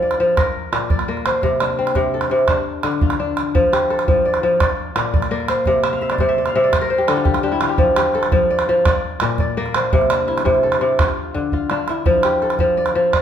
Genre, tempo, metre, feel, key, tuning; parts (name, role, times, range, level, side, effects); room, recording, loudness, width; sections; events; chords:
west african traditional, West African string and xylophone music; 113 BPM (dotted quarters); 12/8; straight; F major; A4 = 440 Hz
kora; arpeggios; 0.0-13.2 s; Bb2 to F5; -17 LUFS; left 1 dB
calabash; percussion; 0.1-13.2 s; -20 LUFS; right 2 dB
wet large studio reverb, RT60 1.1 s; band playing live in one room; -15 LUFS; side -9 dB against mid
0.0-3.5 A section; 3.5-13.2 B section
kora fill 5.8-7.8; drum fill 11.3-12.1
0.4 Bb; 1.4 Amadd11/C; 2.5 Dm; 3.5 F; 4.6 Bb; 5.7 Cadd9; 6.7 N.C.; 7.8 F; 8.9 Bb; 9.9 C; 11.0 Dm; 12.1 F